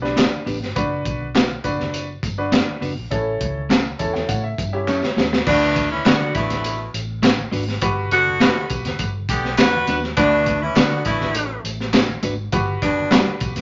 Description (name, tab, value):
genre	uptempo 1960s-style soul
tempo	102 BPM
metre	4/4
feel	straight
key	D major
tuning	A4 = 441 Hz
part	clear grand piano	accompaniment	0.0-13.6 s	C#4 to A5	-27 LUFS	equal	none
part	vintage muted fingered electric bass	bass	0.0-13.6 s	F#1 to D3	-30 LUFS	equal	none
part	crunchy breakbeat drum kit	drums	0.0-13.6 s	crash cymbal, hi-hat, kick drum, snare drum	-23 LUFS	equal	none
part	clean electric guitar	stabs	0.2-13.3 s	G3 to B4	-26 LUFS	equal	none
part	congas	percussion	0.2-13.6 s	none	-40 LUFS	equal	none
part	handclaps and tambourine	percussion	0.2-13.6 s	none	-34 LUFS	equal	none
part	bright saxophone section	second line	5.5-13.4 s	B2 to B4	-22 LUFS	equal	none
room	light reverb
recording	nothing above 7.5 kHz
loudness	-20 LUFS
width	mono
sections	0.0-5.5 A section; 5.5-13.6 B section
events	grand piano fill 3.7-5.5; drum fill 4.9-5.5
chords	0.0 G; 0.8 Bm/F#; 3.1 A; 5.5 D6; 7.8 Gmaj7; 10.2 D6; 12.5 Gmaj7